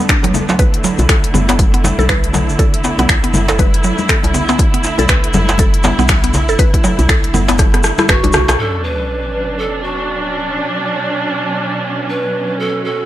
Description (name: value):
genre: afro house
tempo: 120 BPM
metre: 4/4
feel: swing 59% on 16ths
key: B minor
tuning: A4 = 440 Hz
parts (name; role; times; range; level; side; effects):
- warm symphonic string section; sustained chords; 0.0-13.1 s; B2 to F#4; -20 LUFS; right 2 dB; sidechain pumping
- mallet-like synth pluck; arpeggios; 0.0-8.5 s; F#3 to B4; -19 LUFS; equal; chorus, sidechain pumping, ping-pong delay
- tube shaker; percussion; 0.0-8.6 s; none; -26 LUFS; left 2 dB; none
- afro-pop drum kit; drums; 0.1-8.6 s; finger snaps, hi-hat, rim click; -18 LUFS; left 1 dB; low-pass filter on hats, low-pass filter on snare, low-pass filter on room
- electronic kick drum; drums; 0.1-8.2 s; none; -14 LUFS; equal; overdrive
- djembe; percussion; 0.1-8.6 s; none; -22 LUFS; right 1 dB; none
- congas; percussion; 0.2-8.5 s; none; -21 LUFS; left 3 dB; none
- woody FM bass; bass; 1.0-8.6 s; F#1 to B1; -17 LUFS; equal; sidechain pumping
- mellow polished pan flute; melody; 8.1-13.1 s; F#4 to B4; -20 LUFS; right 1 dB; ping-pong delay
- sub drop; sound effects; 8.6-10.6 s; none; -25 LUFS; equal; none
room: light reverb, studio reverb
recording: none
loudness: -12 LUFS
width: side -13 dB against mid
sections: 0.0-8.6 A section; 8.6-13.1 B section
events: drum fill 7.6-8.6; band accent 8.5; impact 8.6-10.6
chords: 0.0 Bm7